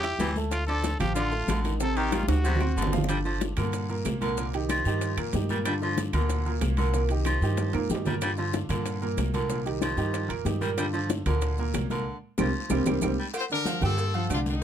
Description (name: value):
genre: latin, salsa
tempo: 187 BPM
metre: 4/4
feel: straight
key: G minor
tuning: A4 = 440 Hz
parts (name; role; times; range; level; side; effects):
- growling trumpet; melody; 0.0-2.9 s; F4 to A4; -31 LUFS; equal; none
- raspy baritone saxophone; second line; 0.0-13.3 s; C3 to G3; -32 LUFS; equal; none
- clear baby grand piano; accompaniment; 0.0-14.6 s; Bb2 to E6; -30 LUFS; right 2 dB; none
- upright bass; bass; 0.0-14.6 s; G1 to G2; -29 LUFS; equal; none
- bongos and cowbell; percussion; 0.0-14.6 s; none; -35 LUFS; left 8 dB; none
- claves; percussion; 0.0-14.5 s; none; -41 LUFS; right 7 dB; none
- congas; percussion; 0.0-14.6 s; none; -34 LUFS; right 1 dB; none
- maracas; percussion; 0.0-14.6 s; none; -43 LUFS; right 6 dB; none
- timbales and agogo bells; percussion; 0.0-14.5 s; none; -37 LUFS; right 8 dB; none
- guiro; percussion; 0.2-14.6 s; none; -45 LUFS; left 7 dB; none
- bright horn section; melody; 13.4-14.6 s; G3 to C5; -30 LUFS; left 3 dB; none
room: light reverb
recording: close, detailed microphones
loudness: -25 LUFS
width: side -9 dB against mid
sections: 0.0-3.1 A section; 3.1-13.3 B section; 13.3-14.6 C section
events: drum fill 2.1-3.1, 7.6-8.2, 12.5-13.3; band accent 12.1-13.3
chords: 0.0 A7(no3); 0.5 Dm; 1.8 Am7b5; 2.4 D7; 3.1 Gm7; 4.4 Cm7; 5.7 Gm7; 6.9 Cm7; 8.2 Gm7; 9.5 Cm7; 10.8 Gm7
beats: 0.20 | 0.52 0.84 1.16 1.48 | 1.80 2.13 2.45 2.77 | 3.09 3.41 3.73 4.05 | 4.37 4.69 5.01 5.33 | 5.66 5.98 6.30 6.62 | 6.94 7.26 7.58 7.90 | 8.22 8.54 8.86 9.18 | 9.50 9.82 10.14 10.46 | 10.78 11.10 11.42 11.74 | 12.06 12.38 12.70 13.02 | 13.34 13.66 13.98 14.30 | 14.62